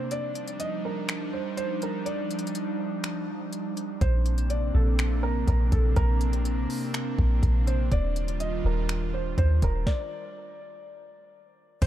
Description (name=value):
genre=hip hop, atmospheric cloud-rap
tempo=123 BPM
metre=4/4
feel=half-time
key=unclear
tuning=A4 = 440 Hz
part: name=felt-muted upright piano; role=melody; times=0.0-11.9 s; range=A4 to Eb5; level=-34 LUFS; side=right 2 dB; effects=low-pass filter, ping-pong delay
part: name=airy breathy pad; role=sustained chords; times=0.0-11.9 s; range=C3 to F4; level=-32 LUFS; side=right 1 dB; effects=chorus, sidechain pumping
part: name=downlifter and impact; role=sound effects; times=0.0-0.1, 11.8-11.9 s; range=none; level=barely audible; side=none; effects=none
part: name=smooth R&B drum kit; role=drums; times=0.1-11.9 s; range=crash cymbal, finger snaps, hi-hat, kick drum, snare drum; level=-29 LUFS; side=equal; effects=overdrive
part: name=soft 808-style bass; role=bass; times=4.0-11.9 s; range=Eb1 to Eb2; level=-24 LUFS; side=equal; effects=none
room=digital ambience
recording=dark, warm production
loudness=-24 LUFS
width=side -12 dB against mid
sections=0.0-11.8 A section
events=break 0.0-4.0; stop 9.9-11.8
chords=0.1 Ebmaj9; 4.0 Bbadd9; 7.9 Ebmaj9